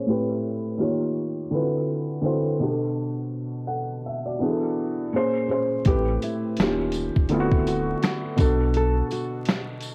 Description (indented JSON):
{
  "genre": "lo-fi hip hop",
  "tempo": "83 BPM",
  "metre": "4/4",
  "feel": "swing 62% on 16ths",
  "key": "unclear",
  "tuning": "A4 = 443 Hz",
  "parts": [
    { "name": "felt-muted upright piano", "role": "accompaniment", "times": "0.0-9.9 s", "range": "A2 to F#5", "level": "-26 LUFS", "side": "equal", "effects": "cassette tape, low-pass filter" },
    { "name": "boom bap sampler-style drum kit", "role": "drums", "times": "5.8-9.9 s", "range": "finger snaps, hi-hat, kick drum, snare drum", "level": "-25 LUFS", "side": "equal", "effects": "cassette tape" },
    { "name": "nylon-string guitar", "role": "melody", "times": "5.9-9.7 s", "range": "E4 to A4", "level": "-33 LUFS", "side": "equal", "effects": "low-pass filter, cassette tape" },
    { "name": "warm sub bass", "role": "bass", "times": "5.9-9.0 s", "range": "D1 to B1", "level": "-29 LUFS", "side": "equal", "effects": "none" },
    { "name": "tambourine", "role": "percussion", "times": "6.2-9.9 s", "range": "none", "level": "-44 LUFS", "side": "equal", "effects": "none" }
  ],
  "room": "light reverb",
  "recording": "home recording on cassette, vinyl crackle, low-pass filter",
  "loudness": "-25 LUFS",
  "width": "mono",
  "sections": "0.0-5.9 A section; 5.9-9.9 B section",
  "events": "filter sweep 0.0-5.9",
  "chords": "0.1 Am7; 0.8 D#9; 1.5 D13; 2.6 Bm7; 4.4 E9sus4; 5.1 Bbm7; 5.9 Am7; 6.6 D#9; 7.3 D13; 8.4 Bm7"
}